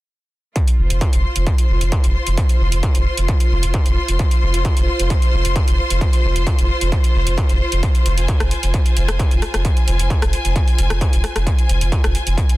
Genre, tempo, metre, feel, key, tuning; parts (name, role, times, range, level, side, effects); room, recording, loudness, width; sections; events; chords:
driving peak-time techno; 132 BPM; 4/4; straight; F minor; A4 = 439 Hz
electronic kick drum; drums; 0.6-12.5 s; -16 LUFS; equal; distortion, overdrive
techno drum kit; drums; 0.6-12.6 s; hi-hat, rim click; -26 LUFS; equal; overdrive, sidechain pumping on hats
bright studio string section; texture; 0.6-12.6 s; F4 to C6; -24 LUFS; left 1 dB; sidechain pumping
saturated sub bass; bass; 0.8-12.4 s; F1; -19 LUFS; equal; overdrive, sidechain pumping, low-pass filter
digital ambience; dense, heavily limited modern master; -15 LUFS; side -18 dB against mid
0.6-12.6 A section
0.6 F5